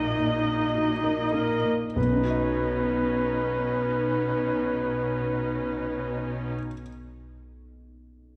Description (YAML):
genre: cinematic, emotional film score for orchestra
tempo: 50 BPM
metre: 4/4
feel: rubato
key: B major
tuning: A4 = 438 Hz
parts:
  - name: dark duduk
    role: melody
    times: 0.0-6.5 s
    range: D#4 to B4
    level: -30 LUFS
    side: equal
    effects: none
  - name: felt-muted upright piano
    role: accompaniment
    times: 0.0-8.4 s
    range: A#1 to D#5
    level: -34 LUFS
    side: equal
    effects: none
  - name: rich studio viola section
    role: accompaniment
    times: 0.0-6.5 s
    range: A#3 to D#5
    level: -34 LUFS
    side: equal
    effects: none
  - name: warm studio cello section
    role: bass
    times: 0.0-6.5 s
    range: A#2 to B2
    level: -35 LUFS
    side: equal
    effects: none
room: moderate scoring stage reverb, RT60 2.0 s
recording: none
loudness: -27 LUFS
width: mono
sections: 0.0-2.0 A section; 2.0-6.8 B section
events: slowing down 0.0-2.0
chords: 0.0 D#m/A#; 2.0 Badd9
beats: 0.76 | 1.97 3.16 4.35 5.55